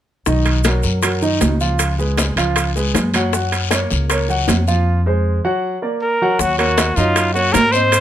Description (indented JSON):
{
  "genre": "Afro-Cuban jazz",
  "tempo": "157 BPM",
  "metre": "4/4",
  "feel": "straight",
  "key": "Eb minor",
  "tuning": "A4 = 440 Hz",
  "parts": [
    { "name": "warm baby grand piano", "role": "accompaniment", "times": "0.3-8.0 s", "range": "D#3 to Gb5", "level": "-20 LUFS", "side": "right 1 dB", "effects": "none" },
    { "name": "upright bass", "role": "bass", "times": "0.3-8.0 s", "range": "B1 to Ab2", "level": "-19 LUFS", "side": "equal", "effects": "none" },
    { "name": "bongos", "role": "percussion", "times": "0.3-8.0 s", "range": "none", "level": "-25 LUFS", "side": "left 11 dB", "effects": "none" },
    { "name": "congas", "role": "percussion", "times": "0.3-8.0 s", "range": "none", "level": "-24 LUFS", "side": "left 1 dB", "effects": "none" },
    { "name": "guiro", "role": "percussion", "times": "0.3-8.0 s", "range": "none", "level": "-27 LUFS", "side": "left 7 dB", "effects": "none" },
    { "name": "maracas", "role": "percussion", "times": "0.3-8.0 s", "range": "none", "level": "-27 LUFS", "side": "right 6 dB", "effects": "none" },
    { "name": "timbales", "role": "percussion", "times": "0.5-8.0 s", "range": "none", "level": "-22 LUFS", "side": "right 6 dB", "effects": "none" },
    { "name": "clear trumpet", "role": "melody", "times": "6.0-8.0 s", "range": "F4 to C5", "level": "-16 LUFS", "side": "equal", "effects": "none" }
  ],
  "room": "light reverb",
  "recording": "close, detailed microphones",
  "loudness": "-14 LUFS",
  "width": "side -11 dB against mid",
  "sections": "0.3-6.4 A section; 6.4-8.0 B section",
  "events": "none",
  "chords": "0.3 Bmaj9; 1.8 Db7; 3.3 Gb; 4.9 Fm; 5.6 Bbaug; 6.4 Ebm7",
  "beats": "| 0.27 0.65 1.03 1.42 | 1.80 2.18 2.57 2.95 | 3.33 3.72 4.10 4.48 | 4.87 5.25 5.63 6.01 | 6.39 6.78 7.16 7.54 | 7.92"
}